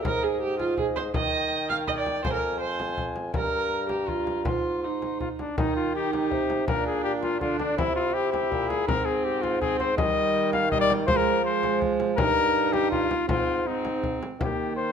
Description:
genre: classical, renaissance-style consort dance.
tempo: 164 BPM.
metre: 3/4.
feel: straight.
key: unclear.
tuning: A4 = 440 Hz.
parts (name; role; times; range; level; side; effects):
warm cornet; melody; 0.0-14.9 s; D4 to C6; -27 LUFS; left 5 dB; none.
warm viola; second line; 0.0-14.9 s; G3 to F5; -29 LUFS; right 6 dB; none.
mellow bassoon; bass; 0.0-14.9 s; F2 to F3; -29 LUFS; right 2 dB; none.
frame drum; percussion; 0.0-14.6 s; none; -32 LUFS; left 2 dB; none.
room: moderate large studio reverb, RT60 1.3 s.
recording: minimal, uncompressed stereo recording.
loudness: -23 LUFS.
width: side -7 dB against mid.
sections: 0.0-5.6 A section; 5.6-14.4 A section.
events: none.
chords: 0.0 Ab5; 1.1 Eb; 2.2 Fm; 3.3 Gm7; 4.5 Ab; 5.6 Eb; 6.7 Bb; 7.8 C; 8.9 Ab; 10.0 Eb; 11.1 Fm; 12.2 Eb/G; 13.3 Ab; 14.4 Eb.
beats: | 0.04 0.41 0.78 | 1.14 1.51 1.88 | 2.24 2.61 2.98 | 3.34 3.71 4.08 | 4.46 4.83 5.20 | 5.58 5.95 6.31 | 6.68 7.04 7.41 | 7.78 8.15 8.51 | 8.88 9.25 9.61 | 9.98 10.34 10.71 | 11.08 11.44 11.81 | 12.17 12.54 12.91 | 13.28 13.66 14.03 | 14.40 14.77.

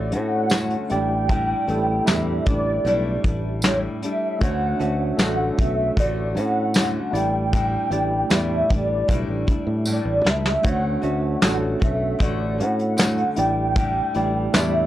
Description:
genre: indie pop, bedroom pop.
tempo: 77 BPM.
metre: 4/4.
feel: straight.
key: D major.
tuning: A4 = 437 Hz.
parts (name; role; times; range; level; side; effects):
warbly nostalgic lead; melody; 0.0-14.9 s; C#5 to G5; -25 LUFS; equal; ensemble chorus, tape echo.
flamenco guitar; accompaniment; 0.0-14.9 s; A2 to F#4; -30 LUFS; left 3 dB; wide subtle chorus, warbly pitch drift.
tine electric piano; accompaniment; 0.0-14.9 s; A3 to E5; -27 LUFS; right 2 dB; medium stereo tremolo, cassette tape.
fingered electric bass; bass; 0.0-14.9 s; A1 to A2; -25 LUFS; equal; none.
soft brush drum kit; drums; 0.1-14.7 s; hi-hat, kick drum, snare drum; -21 LUFS; equal; none.
tambourine; percussion; 0.5-14.7 s; none; -33 LUFS; right 2 dB; none.
room: light reverb.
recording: dry, gritty hardware recording, cassette tape.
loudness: -19 LUFS.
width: side -13 dB against mid.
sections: 0.0-14.9 A section.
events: drum fill 9.9-10.6.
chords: 0.0 Dmaj7; 0.9 A7sus4; 4.4 Dmaj7; 7.1 A7sus4; 10.6 Dmaj7; 13.4 A7sus4.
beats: 0.51 | 1.29 2.07 2.85 3.63 | 4.41 5.18 5.96 6.74 | 7.52 8.30 9.08 9.86 | 10.64 11.42 12.20 12.98 | 13.76 14.54.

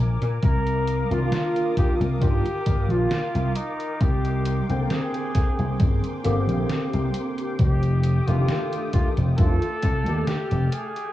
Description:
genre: vaporwave.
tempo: 67 BPM.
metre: 4/4.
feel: swing 54% on 16ths.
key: unclear.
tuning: A4 = 440 Hz.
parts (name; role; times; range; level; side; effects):
soft string machine; sustained chords; 0.0-11.1 s; A3 to F6; -35 LUFS; left 2 dB; phaser, ensemble chorus.
vintage slap bass; bass; 0.0-10.7 s; F1 to Bb2; -22 LUFS; equal; none.
detuned 8-bit digital drum machine; drums; 0.2-11.1 s; hi-hat, snare drum; -30 LUFS; right 1 dB; studio ambience.
warm flugelhorn; melody; 0.4-11.1 s; Eb4 to Bb4; -30 LUFS; equal; tape echo.
electronic kick drum; drums; 0.4-10.0 s; none; -21 LUFS; equal; studio ambience.
bright tine electric piano; accompaniment; 1.1-10.3 s; D3 to G5; -28 LUFS; equal; ensemble chorus, dub echo.
room: light reverb.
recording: echo-heavy mix, cassette tape, small room ambience.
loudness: -20 LUFS.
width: side -14 dB against mid.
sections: 0.0-11.1 A section.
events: none.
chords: 0.4 Cm11; 3.6 Abmaj9#11/C; 7.6 F13.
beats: | 0.43 1.32 2.22 3.11 | 4.01 4.90 5.80 6.70 | 7.59 8.49 9.38 10.28.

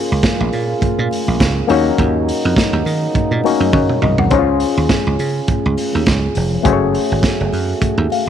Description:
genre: disco.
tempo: 103 BPM.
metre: 4/4.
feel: swing 56% on 16ths.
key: Db major.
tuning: A4 = 440 Hz.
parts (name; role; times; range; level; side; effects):
overdriven clav; accompaniment; 0.0-8.3 s; A3 to Gb5; -19 LUFS; left 8 dB; auto-wah.
dark French horn section; sustained chords; 0.0-8.3 s; Db3 to Ab4; -21 LUFS; right 2 dB; none.
dry thumbed slap bass; bass; 0.1-8.1 s; F1 to Eb3; -18 LUFS; right 2 dB; tube saturation.
vintage drum kit; drums; 0.2-8.3 s; hi-hat, kick drum, snare drum, toms; -19 LUFS; right 2 dB; none.
congas; percussion; 0.2-8.3 s; none; -27 LUFS; left 11 dB; none.
room: light reverb, small room ambience.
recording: 1960s-style stereo.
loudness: -13 LUFS.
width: side -9 dB against mid.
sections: 0.0-8.3 A section.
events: drum fill 3.7-4.3.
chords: 0.0 Bbm7; 1.7 Ebm7; 4.3 Dbmaj7; 6.6 Gbmadd9.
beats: 0.23 0.81 1.40 | 1.98 2.56 3.15 3.73 | 4.31 4.90 5.48 6.06 | 6.65 7.23 7.81.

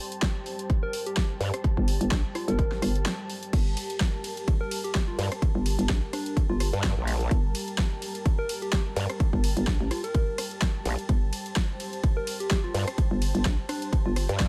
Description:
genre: bass house.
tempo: 127 BPM.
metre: 4/4.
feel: swing 55% on 16ths.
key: G minor.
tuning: A4 = 440 Hz.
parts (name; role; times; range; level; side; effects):
dark analog pad; sustained chords; 0.0-14.5 s; G3 to A5; -40 LUFS; equal; chorus, sidechain pumping.
big-room dance drum kit; drums; 0.1-14.5 s; crash cymbal, hi-hat, ride cymbal, rim click, snare drum; -35 LUFS; equal; overdrive.
electronic kick drum; drums; 0.2-14.5 s; none; -28 LUFS; equal; none.
soft struck synth lead; melody; 0.8-14.2 s; D4 to Bb4; -37 LUFS; equal; chorus, delay.
growl bass; bass; 1.4-1.5, 5.2-14.5 s; Bb1 to G2; -29 LUFS; equal; chorus, sidechain pumping.
hollow knocking FM bass; bass; 1.8-14.3 s; G1 to Bb1; -29 LUFS; equal; overdrive, sidechain pumping.
room: digital ambience.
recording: none.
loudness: -27 LUFS.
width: mono.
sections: 0.0-14.5 A section.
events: break 3.1-3.5.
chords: 0.0 Gmadd9.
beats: 0.23 0.70 1.17 | 1.64 2.11 2.59 3.06 | 3.53 4.00 4.48 4.95 | 5.42 5.89 6.37 6.84 | 7.31 7.78 8.26 8.73 | 9.20 9.67 10.15 10.62 | 11.09 11.56 12.04 12.51 | 12.98 13.45 13.93 14.40.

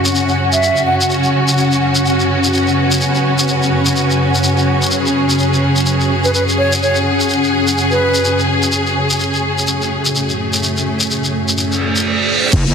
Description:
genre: bass house.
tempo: 126 BPM.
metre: 4/4.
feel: swing 59% on 16ths.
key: F# minor.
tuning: A4 = 440 Hz.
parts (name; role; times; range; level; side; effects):
warm symphonic string section; sustained chords; 0.0-12.7 s; F#2 to G#4; -16 LUFS; equal; sidechain pumping, low-pass filter.
granular cloud pad; texture; 0.0-12.1 s; A3 to F#5; -19 LUFS; left 1 dB; built-in reverb, sidechain pumping.
shekere; percussion; 0.1-12.7 s; none; -20 LUFS; left 1 dB; none.
hollow concert flute; melody; 0.5-1.1, 6.2-8.4 s; B4 to F#5; -18 LUFS; right 2 dB; tape echo.
reverse cymbal; sound effects; 11.7-12.5 s; none; -16 LUFS; right 4 dB; none.
wobble bass; bass; 12.5-12.7 s; F#1; -14 LUFS; equal; chorus, overdrive, sidechain pumping.
electronic kick drum; drums; 12.5-12.6 s; none; -15 LUFS; equal; none.
garage drum kit; drums; 12.5-12.7 s; crash cymbal, hi-hat; -20 LUFS; left 4 dB; none.
room: wet lush hall reverb, RT60 2.2 s.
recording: dense, heavily limited modern master.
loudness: -12 LUFS.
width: side -6 dB against mid.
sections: 0.0-12.5 A section.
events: reverse cymbal 11.7-12.5.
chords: 0.0 F#5.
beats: 0.15 0.63 | 1.10 1.58 2.06 2.53 | 3.01 3.48 3.96 4.44 | 4.91 5.39 5.86 6.34 | 6.82 7.29 7.77 8.24 | 8.72 9.20 9.67 10.15 | 10.63 11.10 11.58 12.05 | 12.53.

